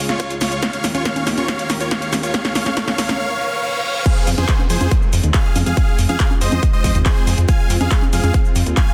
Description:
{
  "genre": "uplifting trance",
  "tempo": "140 BPM",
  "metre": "4/4",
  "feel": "straight",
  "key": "F minor",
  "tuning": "A4 = 440 Hz",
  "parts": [
    { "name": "supersaw pad", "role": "sustained chords", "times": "0.0-8.9 s", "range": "Db2 to Bb4", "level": "-30 LUFS", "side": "equal", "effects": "sidechain pumping" },
    { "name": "riser, reverse cymbal and downlifter", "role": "sound effects", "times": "0.3-7.5 s", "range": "none", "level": "-33 LUFS", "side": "equal", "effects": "none" },
    { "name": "big supersaw lead", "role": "melody", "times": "0.1-8.9 s", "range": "F4 to Ab5", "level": "-25 LUFS", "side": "equal", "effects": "sidechain pumping, delay" },
    { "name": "punchy analog drum machine", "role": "drums", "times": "0.1-8.9 s", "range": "congas, crash cymbal, handclaps, hi-hat, shaker, snare drum", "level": "-24 LUFS", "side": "equal", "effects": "sidechain pumping on hats, sidechain pumping on perc, sidechain pumping on cymbals" },
    { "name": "electronic kick drum", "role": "drums", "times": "0.2-8.9 s", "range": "none", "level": "-19 LUFS", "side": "equal", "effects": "high-pass filter on kick" },
    { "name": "plucky analog bass", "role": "bass", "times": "4.3-8.7 s", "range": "Eb2 to F2", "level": "-20 LUFS", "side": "equal", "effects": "sidechain pumping" }
  ],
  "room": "light reverb",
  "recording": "dense, heavily limited modern master",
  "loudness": "-18 LUFS",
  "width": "mono",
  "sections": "0.0-4.1 A section; 4.1-8.9 B section",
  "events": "build-up 0.0-4.1; drum fill 0.0-3.2; reverse cymbal 3.2-4.1; drop 4.1-8.9",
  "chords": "0.0 Db; 0.6 Eb; 4.1 Fm",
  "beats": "0.20 | 0.63 1.06 1.49 1.91 | 2.34 2.77 3.20 3.63 | 4.06 4.49 4.91 5.34 | 5.77 6.20 6.63 7.06 | 7.49 7.91 8.34 8.77"
}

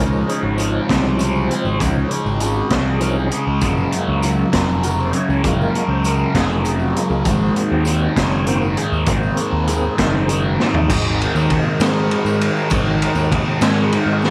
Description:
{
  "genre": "psychedelic rock",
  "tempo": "66 BPM (dotted quarters)",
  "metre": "6/8",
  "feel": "straight",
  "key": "unclear",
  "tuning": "A4 = 440 Hz",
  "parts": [
    { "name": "bright tonewheel organ", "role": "sustained chords", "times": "0.0-14.3 s", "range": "F3 to Eb5", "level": "-27 LUFS", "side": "equal", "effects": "slow rotary speaker, chorus vibrato" },
    { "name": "fuzz guitar", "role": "riff", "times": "0.0-14.3 s", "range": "Gb2 to Db4", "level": "-22 LUFS", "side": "equal", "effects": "distortion, phaser" },
    { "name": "fuzz picked electric bass", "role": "bass", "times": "0.0-14.3 s", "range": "F1 to Ab2", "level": "-22 LUFS", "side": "equal", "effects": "overdrive, transformer saturation" },
    { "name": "tambourine", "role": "percussion", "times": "0.1-14.3 s", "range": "none", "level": "-41 LUFS", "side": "equal", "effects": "none" },
    { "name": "raw garage drum kit", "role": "drums", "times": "0.3-14.3 s", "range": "crash cymbal, hi-hat, kick drum, ride cymbal, snare drum, toms", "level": "-23 LUFS", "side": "equal", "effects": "none" }
  ],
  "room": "light reverb, studio reverb",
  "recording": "none",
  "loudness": "-18 LUFS",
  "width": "mono",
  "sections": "0.0-10.9 A section; 10.9-14.3 B section",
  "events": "tonewheel organ solo 0.0-10.9; drum fill 10.6-10.9",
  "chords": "0.0 Dbadd9; 3.6 Gbmaj7; 7.3 Ab7",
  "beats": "0.90 | 1.81 2.71 | 3.62 4.53 | 5.44 6.35 | 7.26 8.17 | 9.07 9.98 | 10.89 11.80 | 12.71 13.62"
}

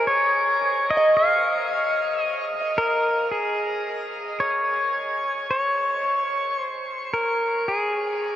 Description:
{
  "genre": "ambient",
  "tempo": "55 BPM",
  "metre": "4/4",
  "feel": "straight",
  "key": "unclear",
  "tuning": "A4 = 440 Hz",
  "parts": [
    { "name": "pedal steel guitar", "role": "melody", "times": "0.0-8.4 s", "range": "Ab4 to F5", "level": "-21 LUFS", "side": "equal", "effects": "diffuse ambient delay" },
    { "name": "soft synth bell", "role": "arpeggios", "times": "0.0-3.3 s", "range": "Eb5", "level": "-27 LUFS", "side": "equal", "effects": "chorus, diffuse ambient delay" }
  ],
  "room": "wet shimmer reverb, RT60 7.4 s",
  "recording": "worn, warbling old tape, cassette tape, warbly pitch drift",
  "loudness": "-20 LUFS",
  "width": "side -12 dB against mid",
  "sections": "0.0-3.3 A section; 3.3-8.4 B section",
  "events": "none",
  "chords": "0.0 F5; 3.3 N.C.",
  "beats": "0.06 1.15 2.24 | 3.33 4.42 5.51 6.60 | 7.69"
}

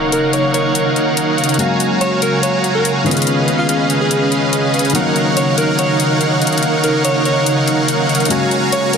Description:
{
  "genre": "future bass",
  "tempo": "143 BPM",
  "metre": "4/4",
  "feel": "half-time",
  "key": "Eb minor",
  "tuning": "A4 = 439 Hz",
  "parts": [
    { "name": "dark grand piano", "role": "accompaniment", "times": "0.0-9.0 s", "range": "Eb3 to F5", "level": "-21 LUFS", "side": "left 4 dB", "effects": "digital delay" },
    { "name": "shimmering ambient pad", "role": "sustained chords", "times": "0.0-9.0 s", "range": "Db3 to F5", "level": "-21 LUFS", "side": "equal", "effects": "chorus, built-in reverb" },
    { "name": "dense compressed supersaw", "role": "riff", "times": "0.0-9.0 s", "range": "Db4 to Bb5", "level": "-16 LUFS", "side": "right 2 dB", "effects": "low-pass filter" },
    { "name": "breathy alto saxophone", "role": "melody", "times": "0.1-9.0 s", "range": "F4 to Db5", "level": "-21 LUFS", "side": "right 1 dB", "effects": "digital delay" },
    { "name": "electronic hi-hat", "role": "drums", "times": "0.1-9.0 s", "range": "none", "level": "-21 LUFS", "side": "left 4 dB", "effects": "none" }
  ],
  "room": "moderate shimmer reverb, RT60 5.7 s",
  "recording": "dense, heavily limited modern master",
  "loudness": "-12 LUFS",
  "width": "side -6 dB against mid",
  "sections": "0.0-9.0 A section",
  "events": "filter sweep on ambient pad 0.0-9.0",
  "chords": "0.0 Ebm7; 1.6 Gbmaj7; 3.1 Db7; 4.9 Ebm7; 8.3 Gbmaj7",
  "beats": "0.33 0.75 1.17 | 1.59 2.01 2.43 2.85 | 3.27 3.69 4.11 4.53 | 4.95 5.37 5.79 6.21 | 6.63 7.05 7.47 7.88 | 8.30 8.72"
}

